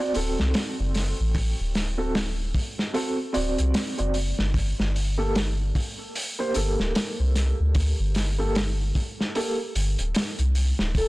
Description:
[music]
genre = trip hop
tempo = 75 BPM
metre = 4/4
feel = swing 59% on 16ths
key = G harmonic minor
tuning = A4 = 440 Hz
[part]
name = felt-muted upright piano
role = accompaniment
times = 0.0-9.6 s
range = Bb3 to D5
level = -29 LUFS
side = right 1 dB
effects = tremolo, tape echo
[part]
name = crunchy breakbeat drum kit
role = drums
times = 0.1-11.1 s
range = hi-hat, kick drum, snare drum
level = -28 LUFS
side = equal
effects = none
[part]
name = soft dub sub bass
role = bass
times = 0.2-11.1 s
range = D1 to D2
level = -24 LUFS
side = equal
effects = tube saturation
[part]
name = vibraphone with soft mallets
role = melody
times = 11.0-11.1 s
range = A4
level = -23 LUFS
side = left 2 dB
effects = none
[sound]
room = studio reverb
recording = blown-out, overdriven recording, overdrive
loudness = -23 LUFS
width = side -20 dB against mid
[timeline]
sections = 0.0-11.1 A section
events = none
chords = 0.0 D7; 4.5 Gmadd9

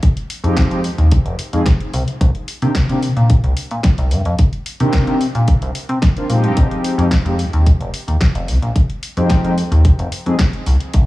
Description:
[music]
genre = nu-disco, nu disco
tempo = 110 BPM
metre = 4/4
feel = straight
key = F dorian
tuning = A4 = 441 Hz
[part]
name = electronic kick drum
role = drums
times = 0.0-11.1 s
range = none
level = -14 LUFS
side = equal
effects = none
[part]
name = house drum kit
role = drums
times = 0.0-11.0 s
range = hi-hat, snare drum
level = -25 LUFS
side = equal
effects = none
[part]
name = mellow synth brass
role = accompaniment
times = 0.4-10.3 s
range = Eb3 to Ab4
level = -22 LUFS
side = equal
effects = chorus, sidechain pumping, dub echo
[part]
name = chorused synth bass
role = bass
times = 0.4-11.0 s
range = F1 to C3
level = -15 LUFS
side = equal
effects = none
[sound]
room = little or no reverb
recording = echo-heavy mix, small room ambience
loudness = -14 LUFS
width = side -18 dB against mid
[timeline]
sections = 0.0-11.1 A section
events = none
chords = 0.0 Fm7; 2.2 Cm7; 6.6 Fm7

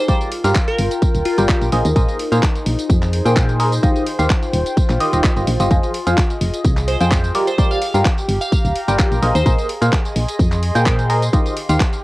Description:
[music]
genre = piano house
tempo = 128 BPM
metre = 4/4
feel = swing 54% on 16ths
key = unclear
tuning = A4 = 440 Hz
[part]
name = glassy wavetable pluck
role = melody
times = 0.0-1.8, 6.9-10.0 s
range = F4 to F5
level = -24 LUFS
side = equal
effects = chorus, cassette tape
[part]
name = warbly tape-like pad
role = texture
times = 0.0-12.0 s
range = Eb4 to C6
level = -25 LUFS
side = left 1 dB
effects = chorus, built-in reverb, sidechain pumping, cassette tape
[part]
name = barking FM electric piano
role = riff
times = 0.1-11.8 s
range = Eb3 to G5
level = -20 LUFS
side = equal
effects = phaser, sidechain pumping, cassette tape
[part]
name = electronic kick drum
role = drums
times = 0.1-11.9 s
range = none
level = -16 LUFS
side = equal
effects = cassette tape
[part]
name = house drum kit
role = drums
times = 0.1-12.0 s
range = handclaps, hi-hat, tambourine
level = -26 LUFS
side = equal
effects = cassette tape
[part]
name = solid FM bass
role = bass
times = 0.4-11.8 s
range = D1 to Bb2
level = -18 LUFS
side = equal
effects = tube saturation, sidechain pumping
[sound]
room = light reverb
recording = home recording on cassette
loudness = -14 LUFS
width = side -18 dB against mid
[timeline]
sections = 0.0-12.0 A section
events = none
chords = 0.0 Gm7; 1.7 Bb9sus4; 3.8 Eb69; 5.7 Fm7; 7.3 Gm7; 9.2 Bb9sus4; 11.3 Eb69

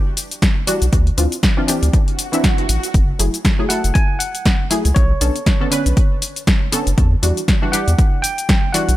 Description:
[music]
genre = deep house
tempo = 119 BPM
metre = 4/4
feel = swing 57% on 16ths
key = unclear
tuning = A4 = 441 Hz
[part]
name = filtered dub chord stab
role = stabs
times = 0.0-8.9 s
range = D3 to B4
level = -22 LUFS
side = equal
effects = analog chorus, sidechain pumping, digital delay
[part]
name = deep house drum kit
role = drums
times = 0.2-9.0 s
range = cabasa, hi-hat, snare drum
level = -21 LUFS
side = left 1 dB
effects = overdrive
[part]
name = electronic kick drum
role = drums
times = 0.4-8.6 s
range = none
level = -16 LUFS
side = equal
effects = overdrive
[part]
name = round analog bass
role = bass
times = 0.8-9.0 s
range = F#1 to E2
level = -16 LUFS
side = equal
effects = none
[part]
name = swell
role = sound effects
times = 2.1-2.9 s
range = none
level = -29 LUFS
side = right 3 dB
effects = none
[part]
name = tine electric piano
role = melody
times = 3.7-9.0 s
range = C#5 to G#5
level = -25 LUFS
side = equal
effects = medium stereo tremolo, digital delay
[sound]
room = little or no reverb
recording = none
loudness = -14 LUFS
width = side -15 dB against mid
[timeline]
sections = 0.0-9.0 A section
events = swell 2.1-2.9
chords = 0.0 Em9; 0.9 Dm9; 2.9 F#m9; 5.0 Bm9; 7.0 Em9

